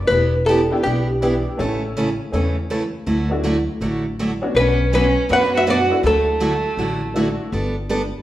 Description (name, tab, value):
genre	country, western swing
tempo	162 BPM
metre	4/4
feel	swing 64% on 8ths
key	D major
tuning	A4 = 440 Hz
part	archtop guitar, miked and amplified	melody	0.0-1.4, 4.6-7.4 s	G4 to F#5	-19 LUFS	left 1 dB	none
part	upright bass	bass	0.0-8.1 s	E1 to F#2	-24 LUFS	equal	none
part	picked steel-string acoustic guitar	accompaniment	0.1-8.0 s	B2 to C#5	-22 LUFS	right 1 dB	none
part	honky-tonk upright piano	accompaniment	0.7-7.5 s	A3 to A4	-26 LUFS	left 1 dB	none
part	clear fiddle	second line	4.6-7.4 s	A3 to B4	-21 LUFS	right 3 dB	none
room	wet large studio reverb, RT60 1.3 s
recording	band playing live in one room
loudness	-17 LUFS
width	side -14 dB against mid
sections	0.0-8.2 A section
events	none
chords	0.1 Em7; 1.6 A; 3.1 Dadd9; 4.6 Bmadd9; 6.0 Dadd9; 7.5 Gadd9